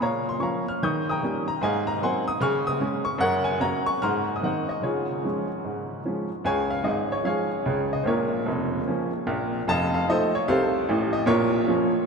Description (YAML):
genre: jazz, stride piano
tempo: 149 BPM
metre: 4/4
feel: swing 63% on 8ths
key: Db major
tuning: A4 = 441 Hz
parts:
  - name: clear upright piano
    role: solo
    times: 0.0-12.1 s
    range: F1 to G6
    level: -22 LUFS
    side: equal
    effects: none
room: wet cathedral reverb, RT60 6.8 s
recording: in a vast, echoing space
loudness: -23 LUFS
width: side -5 dB against mid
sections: 0.0-6.5 A section; 6.5-12.1 B section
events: none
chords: 0.0 Bbm; 0.8 Eb7; 1.6 Ab13; 2.4 Db5; 3.2 Gb; 4.0 Abadd9; 4.8 Db; 8.1 Bbm; 9.7 F7; 11.3 Bbm